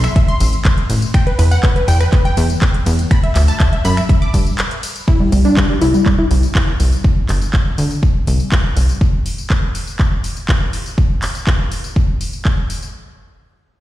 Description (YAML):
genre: progressive house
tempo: 122 BPM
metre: 4/4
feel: straight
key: unclear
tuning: A4 = 440 Hz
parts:
  - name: wide unison pluck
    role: arpeggios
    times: 0.0-6.9 s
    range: G3 to D6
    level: -19 LUFS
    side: equal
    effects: cassette tape, sidechain pumping, tape echo
  - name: plucky analog bass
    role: bass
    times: 0.0-8.9 s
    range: G1 to G2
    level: -14 LUFS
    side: equal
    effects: sidechain pumping
  - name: house drum kit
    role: drums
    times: 0.0-12.9 s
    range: finger snaps, handclaps, hi-hat, ride cymbal, tambourine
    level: -24 LUFS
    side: equal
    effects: none
  - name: electronic kick drum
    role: drums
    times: 0.2-12.6 s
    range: none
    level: -14 LUFS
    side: equal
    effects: none
room: light reverb, digital ambience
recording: played on a big sound system in a bare room, large studio reverb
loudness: -13 LUFS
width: side -15 dB against mid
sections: 0.0-5.1 A section; 5.1-12.9 B section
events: drop 0.0-5.1; break 4.6-5.1; filter sweep on synth pluck 5.1-7.0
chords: 0.0 Am; 1.1 Em7; 5.1 C; 9.0 N.C.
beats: 0.16 0.65 | 1.14 1.63 2.13 2.62 | 3.11 3.60 4.09 4.58 | 5.08 5.57 6.06 6.55 | 7.04 7.54 8.03 8.52 | 9.01 9.50 9.99 10.49 | 10.98 11.47 11.96 12.45